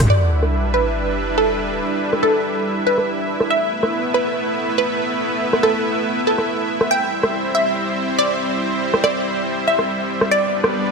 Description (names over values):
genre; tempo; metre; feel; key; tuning
heavy wobble dubstep; 141 BPM; 4/4; half-time; E minor; A4 = 441 Hz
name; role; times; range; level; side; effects
supersaw pad; sustained chords; 0.0-10.9 s; G3 to E5; -20 LUFS; right 1 dB; low-pass filter
dubstep drum kit; drums; 0.0-10.8 s; crash cymbal, hi-hat, rim click, toms; -20 LUFS; equal; low-pass filter on hats, low-pass filter on snare, low-pass filter on toms, low-pass filter on cymbals
wide unison pluck; melody; 0.1-10.9 s; A4 to G5; -20 LUFS; right 1 dB; tape echo
sub drop and riser; sound effects; 0.1-1.8, 10.9 s; none; -21 LUFS; equal; none
room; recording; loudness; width
moderate lush hall reverb, RT60 2.0 s; none; -17 LUFS; side -4 dB against mid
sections
0.1-10.9 A section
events
band accent 0.0; impact 0.1-1.8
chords
0.1 Em7; 3.5 Asus2; 6.9 C; 10.3 G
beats
| 0.10 0.53 0.95 1.38 | 1.80 2.23 2.65 3.08 | 3.50 3.93 4.36 4.78 | 5.21 5.63 6.06 6.48 | 6.91 7.33 7.76 8.19 | 8.61 9.04 9.46 9.89 | 10.31 10.74